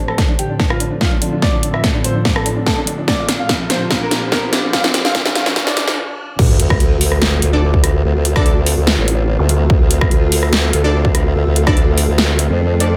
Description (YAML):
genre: heavy wobble dubstep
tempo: 145 BPM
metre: 4/4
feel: half-time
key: D minor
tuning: A4 = 439 Hz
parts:
  - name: warm grand piano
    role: melody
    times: 0.0-6.0 s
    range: D4 to F5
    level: -25 LUFS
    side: equal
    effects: diffuse ambient delay
  - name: evolving wavetable pad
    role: sustained chords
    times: 0.0-13.0 s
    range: D2 to F4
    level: -28 LUFS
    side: equal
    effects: ensemble chorus, built-in reverb, phaser, sidechain pumping
  - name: riser, sub drop and zap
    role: sound effects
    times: 2.6-9.5 s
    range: none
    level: -27 LUFS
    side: equal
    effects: none
  - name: airy breathy pad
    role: texture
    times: 0.0-13.0 s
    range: Bb2 to C5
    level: -30 LUFS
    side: equal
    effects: none
  - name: big-room dance drum kit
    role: drums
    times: 0.1-12.9 s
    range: crash cymbal, hi-hat, rim click, snare drum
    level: -20 LUFS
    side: equal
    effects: none
  - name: electronic kick drum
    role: drums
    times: 0.2-11.7 s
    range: none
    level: -19 LUFS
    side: equal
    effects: none
  - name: formant-sweep wobble bass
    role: bass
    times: 6.4-13.0 s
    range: A1 to F2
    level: -17 LUFS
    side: equal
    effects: chorus, overdrive
  - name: orchestra-hit-like synth stab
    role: stabs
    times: 7.5-12.9 s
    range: D4 to D5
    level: -25 LUFS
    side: equal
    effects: built-in reverb, diffuse ambient delay
room: moderate plate reverb, RT60 1.1 s, digital ambience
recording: dreamy mix soaked in reverb, high-pass filter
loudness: -15 LUFS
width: mono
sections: 0.0-6.4 A section; 6.4-13.0 B section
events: build-up 0.0-6.4; drum fill 0.0-6.0; filter sweep 0.0-6.4; stop 6.0-6.4; drop 6.4-13.0; impact 6.4-8.0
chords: 0.0 Dm; 3.1 Bb; 6.4 Dm